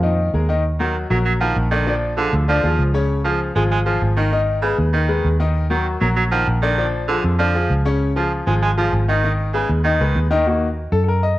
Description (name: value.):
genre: latin.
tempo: 196 BPM.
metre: 4/4.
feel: straight.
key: Eb minor.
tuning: A4 = 440 Hz.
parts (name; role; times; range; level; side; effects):
bright grand piano; accompaniment; 0.0-11.4 s; Db3 to Gb5; -21 LUFS; left 3 dB; cassette tape.
vintage muted fingered electric bass; bass; 0.0-11.3 s; Ab1 to Gb2; -19 LUFS; equal; none.
bright baritone saxophone; second line; 0.8-10.2 s; Db3 to Ab3; -22 LUFS; right 4 dB; cassette tape.
room: moderate spring reverb, RT60 1.8 s, small room reverb.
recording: home recording on cassette, faint mains hum.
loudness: -16 LUFS.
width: side -16 dB against mid.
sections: 0.6-10.5 A section.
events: none.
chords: 0.0 Bb7sus4; 0.6 Ebm; 1.9 Bb7; 3.1 Db; 4.3 Abm; 5.6 Ebm; 6.8 Bb7; 8.0 Db; 9.2 Abm; 10.5 Ebm.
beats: 0.03 0.34 | 0.64 0.95 1.26 1.56 | 1.87 2.18 2.48 2.79 | 3.10 3.40 3.71 4.02 | 4.32 4.63 4.94 5.24 | 5.55 5.86 6.16 6.47 | 6.78 7.08 7.39 7.70 | 8.01 8.31 8.62 8.93 | 9.23 9.54 9.85 10.15 | 10.46 10.77 11.07.